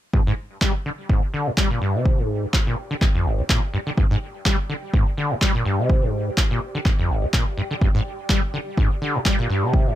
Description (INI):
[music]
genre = acid house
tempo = 125 BPM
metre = 4/4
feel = swing 55% on 16ths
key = unclear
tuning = A4 = 440 Hz
[part]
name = acid bass, saw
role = riff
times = 0.1-10.0 s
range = G1 to G3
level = -23 LUFS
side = equal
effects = overdrive, lush chorus, dub echo
[part]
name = electronic kick drum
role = drums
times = 0.1-9.8 s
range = none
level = -20 LUFS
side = equal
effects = none
[part]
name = granular cloud pad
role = texture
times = 1.3-10.0 s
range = G4 to G5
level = -37 LUFS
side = right 1 dB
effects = built-in reverb, sidechain pumping
[part]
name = electronic handclaps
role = drums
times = 0.6-9.4 s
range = none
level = -24 LUFS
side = equal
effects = none
[sound]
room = little or no reverb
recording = none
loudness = -19 LUFS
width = side -13 dB against mid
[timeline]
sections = 0.1-10.0 A section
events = fade-in on ambient pad 0.1-10.0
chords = 0.1 G5